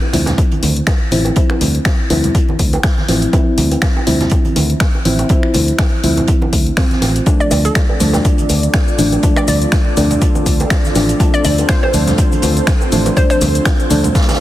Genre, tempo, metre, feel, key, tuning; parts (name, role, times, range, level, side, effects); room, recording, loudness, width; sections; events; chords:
deep house; 122 BPM; 4/4; swing 56% on 16ths; D minor; A4 = 438 Hz
deep mellow chord stab; stabs; 0.0-14.4 s; F3 to F4; -18 LUFS; left 1 dB; chorus, sidechain pumping, ping-pong delay
bongos and congas; percussion; 0.0-14.4 s; -23 LUFS; right 3 dB; sidechain pumping on perc
fingered electric bass; bass; 0.1-14.1 s; A1 to D2; -16 LUFS; equal; sidechain pumping
punchy analog drum machine; drums; 0.1-14.4 s; finger snaps, hi-hat, shaker; -21 LUFS; left 2 dB; overdrive
vintage drum kit; drums; 0.1-14.4 s; hi-hat, snare drum; -28 LUFS; right 2 dB; high-pass filter on hats, high-pass filter on snare, high-pass filter on room
electronic kick drum; drums; 0.4-14.3 s; -14 LUFS; equal; overdrive
airy breathy pad; sustained chords; 7.3-14.4 s; C4 to D5; -22 LUFS; right 1 dB; chorus, sidechain pumping
hollow square pluck; melody; 7.4-13.4 s; A4 to D5; -22 LUFS; equal; chorus, dub echo
light reverb, studio ambience; heavily compressed radio sound, multiband compression; -11 LUFS; side -14 dB against mid
0.0-14.4 A section
0.0 Dm9; 7.3 F6